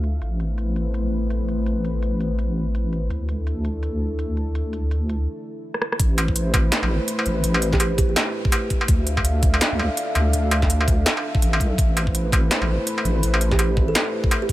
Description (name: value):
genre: half-time drum and bass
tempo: 166 BPM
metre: 4/4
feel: swing 60% on 16ths, half-time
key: A minor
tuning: A4 = 440 Hz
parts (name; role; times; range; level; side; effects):
- dark analog pad; sustained chords; 0.0-14.5 s; A3 to F5; -28 LUFS; left 1 dB; chorus, vintage 12-bit sampler grit, sidechain pumping
- deep soft wobble bass; bass; 0.0-13.9 s; A1 to D2; -22 LUFS; equal; chorus
- industrial drum kit; drums; 0.0-14.5 s; hi-hat, rim click, snare drum, struck metal; -23 LUFS; equal; overdrive, low-pass filter on hats, small room ambience, low-pass filter on snare, low-pass filter on perc
- electronic kick drum; drums; 6.0-14.5 s; none; -21 LUFS; equal; overdrive, small room ambience
- kalimba; melody; 7.7-8.1, 13.5-14.5 s; G4 to A4; -28 LUFS; right 3 dB; digital delay
room: little or no reverb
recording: none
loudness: -19 LUFS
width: side -16 dB against mid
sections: 0.0-6.0 A section; 6.0-14.5 B section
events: break 5.3-6.0; drum fill 5.7; drop 6.0-14.5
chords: 0.2 Amadd9; 3.1 Dsus2; 6.0 Amadd9; 8.9 Dm; 11.8 Amadd9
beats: | 0.21 0.58 0.94 1.30 | 1.66 2.02 2.38 2.75 | 3.11 3.47 3.83 4.19 | 4.55 4.91 5.28 5.64 | 6.00 6.36 6.72 7.08 | 7.44 7.80 8.17 8.53 | 8.89 9.25 9.61 9.97 | 10.34 10.70 11.06 11.42 | 11.78 12.14 12.50 12.87 | 13.23 13.59 13.95 14.31